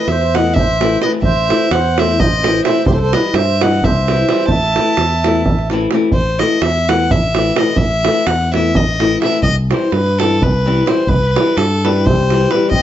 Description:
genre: balkan folk, Balkan wedding band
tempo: 256 BPM (eighths)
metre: 7/8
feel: straight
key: A dorian sharp4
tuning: A4 = 440 Hz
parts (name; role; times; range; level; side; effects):
- warm violin; melody; 0.0-12.8 s; A4 to A5; -17 LUFS; left 1 dB; plate reverb
- mellow accordion; second line; 0.0-5.7, 11.8-12.8 s; G3 to E5; -21 LUFS; right 3 dB; none
- flamenco guitar; accompaniment; 0.0-12.7 s; E3 to E4; -18 LUFS; left 3 dB; none
- fingered electric bass; bass; 0.1-12.8 s; A1 to G2; -18 LUFS; left 1 dB; none
- davul; percussion; 0.1-12.8 s; none; -18 LUFS; right 3 dB; none
room: moderate studio reverb, RT60 0.5 s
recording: nothing above 7.7 kHz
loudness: -12 LUFS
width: side -11 dB against mid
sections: 0.0-6.1 A section; 6.1-12.8 A section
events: none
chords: 0.0 Am; 2.9 C; 4.5 Am; 9.4 C

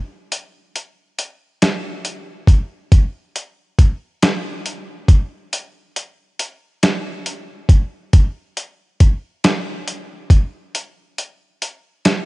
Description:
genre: R&B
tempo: 46 BPM (dotted quarters)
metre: 6/8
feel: straight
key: none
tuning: none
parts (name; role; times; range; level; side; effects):
- dusty soul sampler-style drum kit; drums; 0.3-12.3 s; hi-hat, kick drum, snare drum; -13 LUFS; equal; none
room: digital ambience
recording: home recording on cassette, nothing above 11.0 kHz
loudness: -16 LUFS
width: side -22 dB against mid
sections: 0.0-12.3 A section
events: none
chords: none

